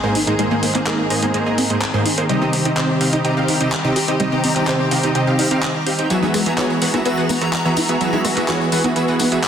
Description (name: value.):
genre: progressive house.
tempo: 126 BPM.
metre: 4/4.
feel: straight.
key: unclear.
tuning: A4 = 441 Hz.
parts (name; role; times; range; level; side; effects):
rich studio string section; sustained chords; 0.0-9.5 s; Eb3 to Ab4; -24 LUFS; left 2 dB; none.
supersaw stab; stabs; 0.0-9.4 s; Ab2 to G5; -18 LUFS; right 2 dB; dub echo.
backwards swelling texture; texture; 0.2-9.5 s; Bb5; -30 LUFS; left 1 dB; built-in reverb.
wide unison pluck; arpeggios; 0.2-9.2 s; F#3 to G5; -24 LUFS; left 1 dB; ensemble chorus, dub echo.
pop drum kit; drums; 0.2-9.5 s; handclaps, hi-hat; -24 LUFS; equal; none.
tambourine; percussion; 6.1-9.5 s; none; -30 LUFS; left 4 dB; none.
electronic congas and rim click; percussion; 6.2-9.3 s; none; -30 LUFS; right 3 dB; none.
room: wet lush hall reverb, RT60 2.0 s.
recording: dense, heavily limited modern master.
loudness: -16 LUFS.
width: side -8 dB against mid.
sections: 0.0-9.5 A section.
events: filter sweep on synth pluck 0.0-9.5.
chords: 0.0 Abadd9; 2.3 Cm; 6.1 Eadd9.